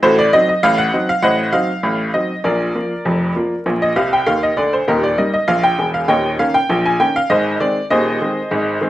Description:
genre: ragtime piano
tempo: 99 BPM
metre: 2/4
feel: straight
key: unclear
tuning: A4 = 441 Hz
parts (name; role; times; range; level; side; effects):
- bright upright piano; solo; 0.0-8.9 s; Eb1 to Ab5; -14 LUFS; equal; none
room: moderate studio reverb, RT60 0.8 s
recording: vinyl crackle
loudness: -14 LUFS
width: side -14 dB against mid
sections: 0.0-8.9 A section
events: upright piano fill 4.0-4.9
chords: 0.0 Adim7; 2.4 Bb; 4.9 Eb; 6.1 Eb5; 7.3 Ab

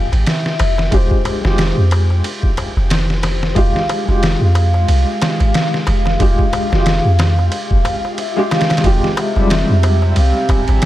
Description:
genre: trip hop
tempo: 91 BPM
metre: 4/4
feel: swing 57% on 16ths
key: F harmonic minor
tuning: A4 = 438 Hz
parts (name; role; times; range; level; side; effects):
- pure breathy sine lead; melody; 0.0-10.9 s; C5 to Ab5; -23 LUFS; equal; wide subtle chorus, tape echo
- felt-muted upright piano; accompaniment; 0.0-10.9 s; G3 to G4; -21 LUFS; left 1 dB; tremolo, tape echo
- bowed-like drone; texture; 0.0-10.9 s; Ab3 to G5; -31 LUFS; right 1 dB; none
- soft 808-style bass; bass; 0.1-10.8 s; F1 to F2; -14 LUFS; equal; tube saturation
- trip hop sampler-style drum kit; drums; 0.1-10.9 s; kick drum, ride cymbal, snare drum; -18 LUFS; equal; none
- darbuka; percussion; 0.1-10.9 s; none; -27 LUFS; left 3 dB; none
- swell; sound effects; 7.8-8.8 s; none; -28 LUFS; left 5 dB; none
- rich studio string section; sustained chords; 8.8-10.9 s; C3; -23 LUFS; right 3 dB; vintage 12-bit sampler grit
room: little or no reverb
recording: dark, warm production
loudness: -13 LUFS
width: side -14 dB against mid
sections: 0.0-8.8 A section; 8.8-10.9 B section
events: swell 7.8-8.8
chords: 0.0 Fmadd9

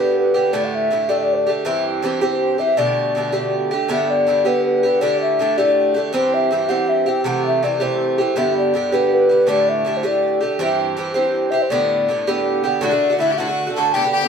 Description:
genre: celtic folk, Celtic jig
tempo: 108 BPM (dotted quarters)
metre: 6/8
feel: straight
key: G major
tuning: A4 = 439 Hz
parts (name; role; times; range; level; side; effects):
- mellow hollow wooden flute; melody; 0.0-14.3 s; B4 to A5; -18 LUFS; left 2 dB; none
- Irish bouzouki; accompaniment; 0.0-14.3 s; G2 to G4; -19 LUFS; right 3 dB; none
- clear fiddle; second line; 12.8-14.3 s; D4 to A4; -24 LUFS; left 7 dB; none
room: wet stone room reverb, RT60 1.2 s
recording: band playing live in one room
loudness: -16 LUFS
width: side -6 dB against mid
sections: 0.0-3.9 A section; 3.9-12.8 A section; 12.8-14.3 B section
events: none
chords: 0.0 G; 0.5 Dsus4; 1.7 C; 2.8 Gadd9; 3.9 G; 5.0 Dsus4; 6.1 C; 7.2 Am7; 8.4 G; 9.5 Dsus4; 10.6 C; 11.7 Gadd9; 12.8 D

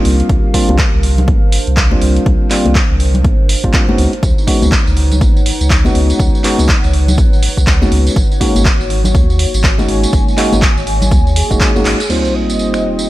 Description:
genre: deep house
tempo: 122 BPM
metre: 4/4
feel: swing 61% on 16ths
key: unclear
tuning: A4 = 443 Hz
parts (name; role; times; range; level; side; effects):
- bright tine electric piano; stabs; 0.0-13.1 s; G3 to Gb4; -18 LUFS; equal; sidechain pumping, tape echo
- warm sub bass; bass; 0.0-11.9 s; Gb1 to Eb2; -14 LUFS; equal; none
- warbly tape-like pad; texture; 0.0-13.1 s; Bb3 to Ab5; -23 LUFS; equal; chorus, built-in reverb, sidechain pumping
- punchy analog drum machine; drums; 0.1-13.1 s; crash cymbal, finger snaps, handclaps, hi-hat, tambourine; -19 LUFS; right 1 dB; none
- electronic kick drum; drums; 0.3-11.7 s; none; -14 LUFS; equal; overdrive
- congas; percussion; 0.7-11.8 s; none; -21 LUFS; left 2 dB; none
- breathy flute-like synth lead; melody; 11.4-13.1 s; Ab4 to Eb5; -20 LUFS; right 1 dB; ensemble chorus, tape echo
- warm analog pad; sustained chords; 12.1-13.1 s; Bb3 to C5; -23 LUFS; right 1 dB; chorus, sidechain pumping
- sub drop; sound effects; 12.1-13.1 s; none; -22 LUFS; equal; none
room: little or no reverb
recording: none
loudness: -10 LUFS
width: side -16 dB against mid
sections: 0.0-12.1 A section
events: drum fill 11.9; band accent 11.9; impact 12.1-13.1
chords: 0.0 C9sus4; 4.0 Db9sus4; 8.2 Ab9sus4; 12.1 F9sus4

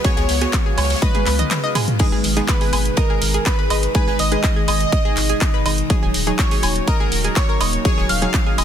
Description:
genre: progressive house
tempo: 123 BPM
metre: 4/4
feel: straight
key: G# dorian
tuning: A4 = 440 Hz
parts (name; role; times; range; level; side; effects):
- plucky unison lead; melody; 0.0-8.6 s; A#4 to E#5; -25 LUFS; right 2 dB; lush chorus, digital delay
- soft synth bell; second line; 0.0-8.6 s; A#5 to E#6; -32 LUFS; equal; chorus, sidechain pumping, dub echo
- evolving wavetable pad; sustained chords; 0.0-8.6 s; B2 to E#5; -26 LUFS; left 3 dB; chorus, built-in reverb, phaser, sidechain pumping
- analog pluck; arpeggios; 0.0-8.6 s; G#4 to G#5; -26 LUFS; equal; chorus, sidechain pumping, dub echo
- wide unison pluck; stabs; 0.0-8.6 s; F#3 to C#5; -27 LUFS; right 4 dB; sidechain pumping, dub echo
- big-room dance drum kit; drums; 0.0-8.6 s; crash cymbal, handclaps, hi-hat, toms, woodblock; -23 LUFS; equal; overdrive
- electronic kick drum; drums; 0.0-8.4 s; none; -18 LUFS; equal; overdrive
- open jazz drum kit; drums; 0.0-8.6 s; ride cymbal, snare drum; -32 LUFS; left 3 dB; sidechain pumping on cymbals, high-pass filter on cymbals, high-pass filter on snare, high-pass filter on room
- round analog bass; bass; 0.2-8.6 s; D#1 to C#2; -22 LUFS; equal; sidechain pumping
room: digital ambience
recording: dense, heavily limited modern master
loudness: -16 LUFS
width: side -9 dB against mid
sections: 0.0-8.6 A section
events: drum fill 1.0-2.0; kick drops out 1.5-2.0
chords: 0.0 C#7sus4; 2.0 G#m; 5.9 D#m7

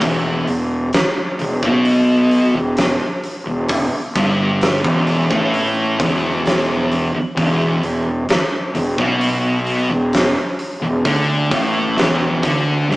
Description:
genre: stoner and doom metal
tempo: 65 BPM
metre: 4/4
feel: straight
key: E minor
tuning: A4 = 440 Hz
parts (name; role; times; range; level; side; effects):
- thick fuzz guitar; riff; 0.0-13.0 s; E2 to D3; -18 LUFS; left 1 dB; distortion
- thick fuzz guitar; riff; 0.0-13.0 s; E2 to D3; -24 LUFS; right 2 dB; distortion
- fuzz fingered electric bass; bass; 0.0-13.0 s; E1 to D2; -22 LUFS; equal; overdrive
- big rock drum kit; drums; 0.0-13.0 s; hi-hat, kick drum, snare drum; -20 LUFS; equal; none
room: moderate stone room reverb, RT60 1.4 s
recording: rough rehearsal-room recording, warm saturation, small speaker sound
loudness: -15 LUFS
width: side -19 dB against mid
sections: 0.0-13.0 A section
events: none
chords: 0.0 Em

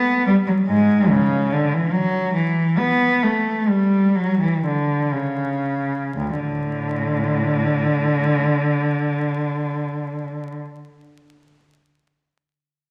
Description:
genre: classical, baroque-style suite movement for unaccompanied cello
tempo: 56-74 BPM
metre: 4/4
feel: rubato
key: D major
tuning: A4 = 441 Hz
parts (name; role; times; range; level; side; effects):
- rich cello; solo; 0.0-10.6 s; D2 to B3; -20 LUFS; equal; none
room: wet recital hall reverb, RT60 1.6 s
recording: vinyl crackle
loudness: -20 LUFS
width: mono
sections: 0.0-6.2 A section; 6.2-10.3 B section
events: slowing down 0.0-6.2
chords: none

